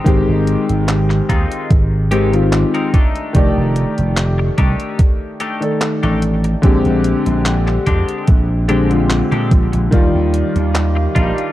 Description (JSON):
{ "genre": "vaporwave", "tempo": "73 BPM", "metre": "4/4", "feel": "swing 53% on 16ths", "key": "unclear", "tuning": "A4 = 438 Hz", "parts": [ { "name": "warm electric grand piano", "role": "accompaniment", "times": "0.0-11.5 s", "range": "D3 to D5", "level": "-18 LUFS", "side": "left 2 dB", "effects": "lush chorus, tape echo" }, { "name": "clean electric guitar", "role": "riff", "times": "0.0-11.5 s", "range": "G3 to Bb4", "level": "-26 LUFS", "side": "left 2 dB", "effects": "analog chorus, tape echo" }, { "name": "vintage slap bass", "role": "bass", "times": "0.1-11.3 s", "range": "F1 to Bb2", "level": "-16 LUFS", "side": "equal", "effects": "tube saturation" }, { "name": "detuned 8-bit digital drum machine", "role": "drums", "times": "0.1-11.5 s", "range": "handclaps, hi-hat", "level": "-24 LUFS", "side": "equal", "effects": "overdrive" }, { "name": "electronic kick drum", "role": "drums", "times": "0.1-11.3 s", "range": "none", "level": "-14 LUFS", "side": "equal", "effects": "overdrive" }, { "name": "warbly tape-like pad", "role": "sustained chords", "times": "10.4-11.5 s", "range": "G4 to D6", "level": "-25 LUFS", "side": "right 3 dB", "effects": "chorus, built-in reverb" } ], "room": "light reverb, digital ambience", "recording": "dark, warm production", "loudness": "-13 LUFS", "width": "side -14 dB against mid", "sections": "0.0-11.5 A section", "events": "none", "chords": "0.0 Abmaj7; 2.9 F13; 6.6 Bb13; 9.9 Ebmaj9" }